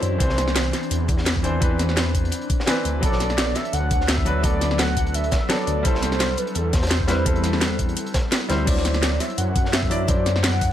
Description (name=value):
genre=liquid drum and bass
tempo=170 BPM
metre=4/4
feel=swing 54% on 16ths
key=A dorian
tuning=A4 = 440 Hz
part: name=warm velvety synth lead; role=melody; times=0.0-10.7 s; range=A4 to F#5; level=-28 LUFS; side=equal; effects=chorus, digital delay
part: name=clear grand piano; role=accompaniment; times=0.0-10.7 s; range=E3 to D5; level=-27 LUFS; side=equal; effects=digital delay
part: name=ethereal airy pad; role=sustained chords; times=0.0-10.7 s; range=E3 to B5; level=-31 LUFS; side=left 2 dB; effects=ensemble chorus, built-in reverb, sidechain pumping
part: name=dark detuned saw bass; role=bass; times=0.0-10.7 s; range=B1 to F#2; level=-24 LUFS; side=equal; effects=none
part: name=crunchy breakbeat drum kit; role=drums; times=0.0-10.7 s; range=hi-hat, snare drum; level=-31 LUFS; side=equal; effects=high-pass filter on hats, high-pass filter on snare, high-pass filter on room
part: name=drum and bass drum kit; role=drums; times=0.0-10.7 s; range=crash cymbal, hi-hat, snare drum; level=-24 LUFS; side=equal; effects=none
part: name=electronic kick drum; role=drums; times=0.2-10.7 s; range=none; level=-23 LUFS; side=equal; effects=none
room=little or no reverb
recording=none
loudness=-19 LUFS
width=side -11 dB against mid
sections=0.0-10.7 A section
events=none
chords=0.2 Cmaj9; 3.0 Bm7; 5.9 Am7/C; 8.7 D9